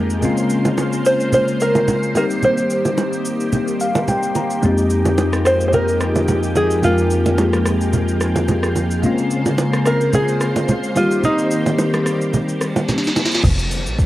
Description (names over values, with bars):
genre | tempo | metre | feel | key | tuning
amapiano | 109 BPM | 4/4 | swing 55% on 16ths | F minor | A4 = 442 Hz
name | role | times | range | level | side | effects
bell-like tine electric piano | accompaniment | 0.0-13.5 s | F2 to Bb5 | -20 LUFS | left 2 dB | phaser
ensemble organ-string | sustained chords | 0.0-13.4 s | Db3 to C5 | -22 LUFS | equal | ensemble chorus, sidechain pumping
smooth R&B drum kit | drums | 0.1-14.1 s | crash cymbal, hi-hat, kick drum, rim click, shaker, snare drum | -24 LUFS | equal | overdrive, cassette tape
congas and bongos | percussion | 0.2-13.3 s | none | -21 LUFS | right 2 dB | none
open-back banjo | melody | 1.1-12.3 s | Eb4 to C5 | -18 LUFS | equal | cassette tape, analog delay
reverse cymbal and downlifter | sound effects | 12.7-14.1 s | none | -25 LUFS | right 1 dB | none
deep log drum bass | bass | 13.4-14.1 s | F1 to Bb1 | -19 LUFS | equal | none
room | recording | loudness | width
light reverb | home recording on cassette | -15 LUFS | side -15 dB against mid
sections
0.0-13.4 A section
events
tine electric piano fill 3.5-4.6; reverse cymbal 12.7-13.4; drum fill 12.9-13.4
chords
0.2 Bbm9; 2.2 Cm7; 4.6 Fm11; 9.0 Bbm9; 11.0 Cm7; 13.4 Fsus4